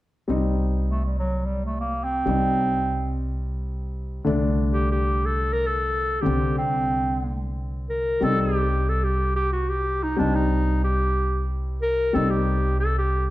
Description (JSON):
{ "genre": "klezmer", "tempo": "free time", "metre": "none", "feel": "none", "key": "C minor", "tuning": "A4 = 437 Hz", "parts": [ { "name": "warm upright piano", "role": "accompaniment", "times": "0.3-13.3 s", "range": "D3 to Eb4", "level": "-27 LUFS", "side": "left 2 dB", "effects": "none" }, { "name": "upright bass", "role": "bass", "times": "0.3-13.3 s", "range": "C2", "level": "-25 LUFS", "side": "equal", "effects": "none" }, { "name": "warm clarinet", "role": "melody", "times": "0.9-13.3 s", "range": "F#3 to Bb4", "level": "-25 LUFS", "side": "equal", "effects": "none" } ], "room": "moderate recital hall reverb, RT60 1.3 s", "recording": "dark, warm production", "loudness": "-21 LUFS", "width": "side -16 dB against mid", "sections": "0.3-8.2 A section; 8.2-13.3 B section", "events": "none", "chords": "0.3 Cm; 4.3 D5/C; 8.2 Cm" }